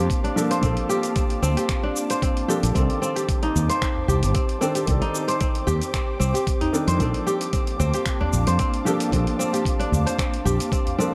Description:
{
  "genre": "organic downtempo",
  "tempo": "113 BPM",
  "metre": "4/4",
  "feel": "swing 54% on 16ths",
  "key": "unclear",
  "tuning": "A4 = 441 Hz",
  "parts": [
    { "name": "felt-muted upright piano", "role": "accompaniment", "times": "0.0-11.1 s", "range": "Eb3 to D5", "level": "-32 LUFS", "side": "equal", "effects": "sidechain pumping, tape echo" },
    { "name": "ethereal airy pad", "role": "sustained chords", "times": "0.0-11.1 s", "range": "Bb3 to D6", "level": "-33 LUFS", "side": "equal", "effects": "ensemble chorus, built-in reverb, sidechain pumping" },
    { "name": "kora", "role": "arpeggios", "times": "0.0-11.1 s", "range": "C4 to C5", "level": "-28 LUFS", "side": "equal", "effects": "tape echo" },
    { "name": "fretless electric bass", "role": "bass", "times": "0.0-10.6 s", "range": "G1 to F2", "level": "-24 LUFS", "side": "equal", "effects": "none" },
    { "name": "dusty soul sampler-style drum kit", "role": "drums", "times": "0.1-11.1 s", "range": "cabasa, finger snaps, hi-hat", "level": "-34 LUFS", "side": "equal", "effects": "none" },
    { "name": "electronic kick drum", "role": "drums", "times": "0.1-10.8 s", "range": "none", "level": "-27 LUFS", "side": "equal", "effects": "none" },
    { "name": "udu", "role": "percussion", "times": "3.6-11.0 s", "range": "none", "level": "-31 LUFS", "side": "equal", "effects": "none" }
  ],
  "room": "light reverb, digital ambience",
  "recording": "none",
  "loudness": "-23 LUFS",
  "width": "mono",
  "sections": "0.0-11.1 A section",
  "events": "none",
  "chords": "0.0 Bbmaj7; 2.8 Cm69; 7.0 Bbmaj7"
}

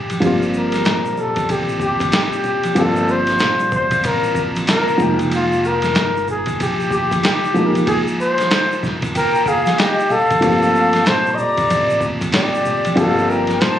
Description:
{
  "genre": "hip hop, jazz-hop",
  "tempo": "94 BPM",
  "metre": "4/4",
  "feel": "swing 62% on 16ths",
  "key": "G phrygian",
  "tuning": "A4 = 443 Hz",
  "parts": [
    { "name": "mellow flugelhorn", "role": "melody", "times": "0.0-13.8 s", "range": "F4 to Eb5", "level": "-18 LUFS", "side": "left 1 dB", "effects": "none" },
    { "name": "upright bass", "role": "bass", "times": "0.0-13.8 s", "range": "F1 to Bb1", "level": "-27 LUFS", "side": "equal", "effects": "none" },
    { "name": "lo-fi sampler-style drum kit", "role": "drums", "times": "0.1-13.8 s", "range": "hi-hat, kick drum, ride cymbal, snare drum", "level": "-21 LUFS", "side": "equal", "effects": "none" },
    { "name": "congas and tube shaker", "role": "percussion", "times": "0.1-13.8 s", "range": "none", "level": "-30 LUFS", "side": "left 1 dB", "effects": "none" },
    { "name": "dark upright piano", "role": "accompaniment", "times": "0.2-13.8 s", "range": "F3 to G5", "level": "-21 LUFS", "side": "right 1 dB", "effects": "none" },
    { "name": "breathy jazz flute", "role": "second line", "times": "9.2-13.8 s", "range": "D5 to C6", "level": "-22 LUFS", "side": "left 2 dB", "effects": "none" }
  ],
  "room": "moderate studio reverb, RT60 0.7 s",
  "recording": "recorded on a phone in the room, club reverb, compression, nothing above 11.0 kHz",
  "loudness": "-15 LUFS",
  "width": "side -11 dB against mid",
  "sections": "0.2-13.8 A section",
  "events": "break 0.0",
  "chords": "0.2 Gm11; 5.0 Fm11; 10.4 Gm11"
}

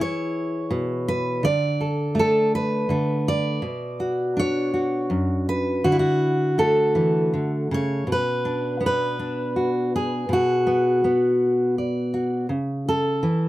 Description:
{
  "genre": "folk, solo fingerstyle acoustic guitar",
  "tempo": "54 BPM (dotted quarters)",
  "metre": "6/8",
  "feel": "straight",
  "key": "B dorian",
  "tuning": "A4 = 439 Hz",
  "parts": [
    { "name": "fingerpicked steel-string acoustic guitar", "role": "solo", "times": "0.0-13.5 s", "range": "F#2 to D5", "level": "-20 LUFS", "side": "equal", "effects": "none" }
  ],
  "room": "moderate small room ambience, RT60 0.5 s",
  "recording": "none",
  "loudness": "-20 LUFS",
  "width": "side -16 dB against mid",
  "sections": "0.0-8.1 A section; 8.1-13.5 B section",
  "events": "none",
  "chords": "0.0 E; 1.4 D5; 3.6 Bmadd9; 5.8 D; 8.1 Bm; 12.5 A/C#"
}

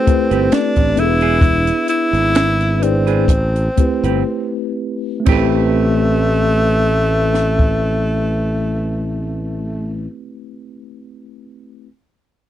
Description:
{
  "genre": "R&B, neo-soul",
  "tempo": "59-67 BPM",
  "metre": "4/4",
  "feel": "swing 53% on 16ths",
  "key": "A minor",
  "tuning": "A4 = 439 Hz",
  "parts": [
    { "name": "breathy tenor saxophone", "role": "melody", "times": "0.0-10.1 s", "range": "A3 to E4", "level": "-19 LUFS", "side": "equal", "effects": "none" },
    { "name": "mellow tine electric piano", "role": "accompaniment", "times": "0.0-11.9 s", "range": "A3 to D5", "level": "-21 LUFS", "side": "left 1 dB", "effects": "slow stereo tremolo" },
    { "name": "modern bright fingered electric bass", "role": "bass", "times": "0.1-10.1 s", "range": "E1 to A1", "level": "-18 LUFS", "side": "equal", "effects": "none" },
    { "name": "compact cocktail drum kit", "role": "drums", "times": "0.1-7.8 s", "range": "crash cymbal, finger snaps, hi-hat, kick drum, snare drum", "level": "-16 LUFS", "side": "equal", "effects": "none" },
    { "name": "semi-hollow electric guitar", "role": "second line", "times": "0.3-10.1 s", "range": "C4 to B4", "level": "-23 LUFS", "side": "right 11 dB", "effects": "none" }
  ],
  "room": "little or no reverb",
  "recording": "dry, close 1970s-style studio recording",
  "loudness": "-14 LUFS",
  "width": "side -12 dB against mid",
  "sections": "0.0-5.3 A section; 5.3-9.4 B section",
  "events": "slowing down 0.0-5.3; break 4.3-5.3",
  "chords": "0.0 Am9; 1.0 E7; 3.3 Am9"
}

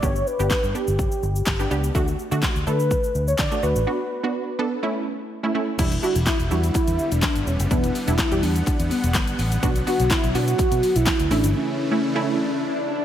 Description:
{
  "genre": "dance-pop",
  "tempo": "125 BPM",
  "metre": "4/4",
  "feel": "straight",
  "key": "unclear",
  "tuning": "A4 = 440 Hz",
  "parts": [
    { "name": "warm velvety synth lead", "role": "melody", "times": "0.0-12.9 s", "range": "B3 to D5", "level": "-25 LUFS", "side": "equal", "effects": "chorus, tape echo, slapback echo" },
    { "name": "wide unison pluck", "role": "accompaniment", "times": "0.0-12.8 s", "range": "G3 to A4", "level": "-27 LUFS", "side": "right 2 dB", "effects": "slapback echo" },
    { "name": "vintage muted fingered electric bass", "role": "bass", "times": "0.0-11.5 s", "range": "E1 to D3", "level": "-23 LUFS", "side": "equal", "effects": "sidechain pumping" },
    { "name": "pop drum kit", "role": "drums", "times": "0.0-11.5 s", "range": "crash cymbal, handclaps, hi-hat, kick drum, shaker, snare drum", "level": "-24 LUFS", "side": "equal", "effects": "none" },
    { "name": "group handclap", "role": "percussion", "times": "0.5-11.2 s", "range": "none", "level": "-39 LUFS", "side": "left 5 dB", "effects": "none" },
    { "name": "supersaw chords", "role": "sustained chords", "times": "5.8-13.0 s", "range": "C#3 to F#5", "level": "-30 LUFS", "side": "equal", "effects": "sidechain pumping" },
    { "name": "swell", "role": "sound effects", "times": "12.1-13.0 s", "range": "none", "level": "-29 LUFS", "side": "left 3 dB", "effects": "none" }
  ],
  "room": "light reverb, digital ambience",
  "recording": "none",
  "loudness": "-20 LUFS",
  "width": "side -10 dB against mid",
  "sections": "0.0-5.8 A section; 5.8-13.0 B section",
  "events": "break 3.9-5.8, 11.5-13.0; swell 12.1-13.0",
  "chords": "0.0 G; 1.9 D; 3.9 Bm; 4.8 A; 5.8 Em7; 9.6 Bm; 11.3 A"
}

